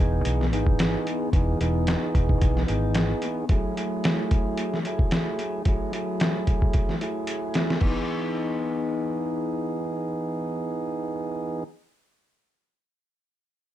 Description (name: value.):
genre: indie pop, bedroom pop.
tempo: 111 BPM.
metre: 4/4.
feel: swing 55% on 16ths.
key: E major.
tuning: A4 = 440 Hz.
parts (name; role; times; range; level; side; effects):
electric guitar through a small old amp; accompaniment; 0.0-11.8 s; E3 to G#4; -32 LUFS; left 6 dB; lush chorus, warbly pitch drift.
tonewheel organ; accompaniment; 0.0-11.6 s; E3 to G#4; -29 LUFS; right 3 dB; stopped rotary speaker, cassette tape.
vintage muted fingered electric bass; bass; 0.0-3.1 s; E1 to B1; -25 LUFS; equal; none.
lo-fi sampler-style drum kit; drums; 0.3-8.0 s; crash cymbal, hi-hat, kick drum, snare drum; -24 LUFS; equal; none.
room: light reverb.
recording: dark, warm production.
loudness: -23 LUFS.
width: side -12 dB against mid.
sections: 0.0-7.8 A section; 7.8-12.2 B section.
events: drum fill 7.3-7.8.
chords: 0.0 Emaj7; 3.5 F#m9; 7.8 Emaj7.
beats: 0.25 0.79 | 1.33 1.87 2.41 2.95 | 3.49 4.04 4.58 5.12 | 5.66 6.20 6.74 7.28 | 7.82 8.36 8.90 9.45 | 9.99 10.53 11.07 11.61.